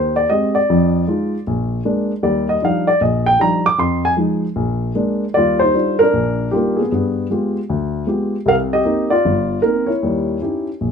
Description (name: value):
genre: solo jazz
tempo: 154 BPM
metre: 4/4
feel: swing 66% on 8ths, rubato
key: Eb major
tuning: A4 = 440 Hz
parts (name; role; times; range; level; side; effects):
- dark baby grand piano; solo; 0.0-10.9 s; G1 to D6; -15 LUFS; equal; none
room: light reverb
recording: minimal, uncompressed stereo recording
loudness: -15 LUFS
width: side -6 dB against mid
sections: 0.0-5.4 A section; 5.4-10.9 B section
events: grand piano solo 0.0-5.4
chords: 0.0 Abmaj7; 0.7 Fm7; 1.4 Bb7; 2.2 Ebmaj9; 3.8 Fm7; 4.6 Bb7; 5.4 Ebmaj9; 6.9 G7b9; 8.5 Cm7; 10.0 Eb7b9